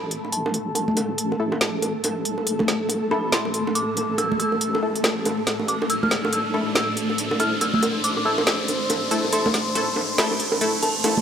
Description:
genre	deep dubstep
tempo	140 BPM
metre	4/4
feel	swing 60% on 16ths, half-time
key	A minor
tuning	A4 = 438 Hz
part	dark detuned synth bell	melody	0.0-11.2 s	A5 to F6	-28 LUFS	equal	chorus, low-pass filter, dub echo
part	granular cloud pad	sustained chords	0.0-11.2 s	A3 to C5	-29 LUFS	left 1 dB	built-in reverb
part	deep soft wobble bass	bass	0.0-11.2 s	A1 to B1	-35 LUFS	equal	chorus, high-pass filter
part	riser	sound effects	1.5-11.2 s	none	-30 LUFS	equal	none
part	flickering grainy texture	texture	0.0-11.2 s	A3 to A4	-30 LUFS	equal	built-in reverb
part	deep house drum kit	drums	0.1-11.1 s	hi-hat, snare drum	-24 LUFS	equal	none
part	bongos and congas	percussion	0.2-11.2 s	none	-27 LUFS	right 2 dB	none
part	filtered dub chord stab	stabs	1.4-11.1 s	A3 to A4	-29 LUFS	left 2 dB	chorus, dub echo
room	moderate lush hall reverb, RT60 1.5 s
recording	none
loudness	-20 LUFS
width	side -8 dB against mid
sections	0.0-11.2 A section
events	build-up 0.0-11.2; filter sweep on ambient pad 0.0-11.2; filter sweep on synth bell 0.0-11.2; riser 1.5-11.2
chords	0.0 A5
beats	0.33 | 0.76 1.18 1.61 2.04 | 2.47 2.90 3.33 3.75 | 4.18 4.61 5.04 5.47 | 5.90 6.33 6.75 7.18 | 7.61 8.04 8.47 8.90 | 9.33 9.76 10.18 10.61 | 11.04

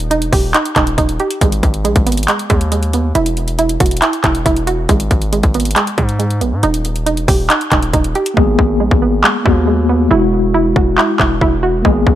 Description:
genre	hip hop, trap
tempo	138 BPM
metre	4/4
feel	half-time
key	G# minor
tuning	A4 = 438 Hz
part	hollow square pluck	arpeggios	0.0-12.2 s	G#3 to G4	-17 LUFS	right 4 dB	chorus, low-pass filter, ping-pong delay
part	distorted 808-style bass	bass	0.0-12.2 s	D#1 to G#2	-17 LUFS	equal	distortion
part	trap drum kit	drums	0.0-12.2 s	handclaps, hi-hat, kick drum	-15 LUFS	equal	none
part	mellow tine electric piano	accompaniment	8.3-12.2 s	G#3 to G#4	-15 LUFS	left 3 dB	fast stereo tremolo, low-pass filter
room	light reverb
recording	none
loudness	-12 LUFS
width	side -12 dB against mid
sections	0.0-12.2 A section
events	hi-hats muted 8.4-12.2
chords	0.0 D#; 1.4 G#m; 3.2 Esus2; 4.9 G#m; 6.6 D#; 8.4 G#madd9; 10.1 Eadd9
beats	0.11 0.54 0.98 | 1.41 1.85 2.28 2.72 | 3.15 3.59 4.02 4.46 | 4.89 5.33 5.76 6.20 | 6.63 7.07 7.50 7.94 | 8.37 8.80 9.24 9.68 | 10.11 10.54 10.98 11.41 | 11.85

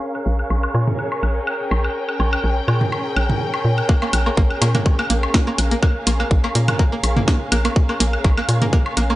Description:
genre	minimal techno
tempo	124 BPM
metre	4/4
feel	swing 54% on 16ths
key	Bb dorian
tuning	A4 = 440 Hz
part	dark studio string section	texture	0.0-9.2 s	Db4 to G5	-25 LUFS	left 1 dB	sidechain pumping
part	flickering grainy texture	texture	0.0-3.9 s	Db5	-35 LUFS	right 1 dB	built-in reverb, sidechain pumping
part	electronic woodblock and toms	percussion	0.1-9.2 s	none	-24 LUFS	right 1 dB	overdrive, studio reverb
part	hollow knocking FM bass	bass	0.3-9.1 s	Bb1 to Bb2	-19 LUFS	equal	sidechain pumping
part	string-like resonator pluck	riff	3.9-9.1 s	Bb3	-25 LUFS	equal	chorus, sidechain pumping, tape echo
part	electronic kick drum	drums	3.9-8.8 s	none	-16 LUFS	equal	studio reverb
part	garage drum kit	drums	4.1-9.1 s	hi-hat, snare drum	-22 LUFS	equal	studio reverb
room	digital ambience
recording	dry, gritty hardware recording, low-pass filter, nothing above 10.4 kHz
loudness	-16 LUFS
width	side -16 dB against mid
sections	0.0-3.9 A section; 3.9-9.2 B section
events	filter sweep 0.0-3.9; drop 3.9-9.2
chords	0.0 Bbm7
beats	| 0.02 0.50 0.99 1.47 | 1.96 2.44 2.92 3.41 | 3.89 4.37 4.86 5.34 | 5.83 6.31 6.79 7.28 | 7.76 8.24 8.73

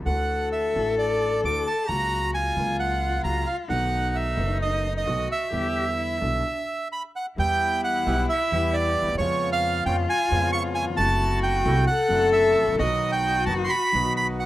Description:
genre	tango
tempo	132 BPM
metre	4/4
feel	rubato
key	unclear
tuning	A4 = 440 Hz
part	warm concert grand piano	accompaniment	0.0-14.5 s	F#1 to A#4	-32 LUFS	left 2 dB	none
part	upright bass	bass	0.0-14.5 s	F#1 to E#2	-28 LUFS	right 1 dB	none
part	bandoneon	melody	0.1-14.5 s	C#5 to D6	-25 LUFS	right 2 dB	none
part	warm cello	second line	0.1-14.4 s	D4 to A4	-27 LUFS	left 4 dB	none
part	bandoneon	stabs	7.4-14.5 s	F#3 to G4	-36 LUFS	right 2 dB	none
room	moderate small room reverb, RT60 0.5 s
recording	rough home demo mix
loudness	-21 LUFS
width	side -15 dB against mid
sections	0.0-7.4 A section; 7.4-14.5 B section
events	stop 6.4-7.4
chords	0.1 Dadd9; 1.9 F#/C#; 3.7 B7; 5.5 Em7; 7.4 Em; 9.2 C#7/E#; 11.0 F#m7b5; 12.8 B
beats	| 0.06 0.52 0.98 1.44 | 1.89 2.35 2.80 3.25 | 3.70 4.15 4.61 5.07 | 5.52 5.98 6.44 6.91 | 7.38 7.83 8.29 8.74 | 9.20 9.64 10.09 10.54 | 10.98 11.43 11.88 12.33 | 12.79 13.25 13.71 14.17

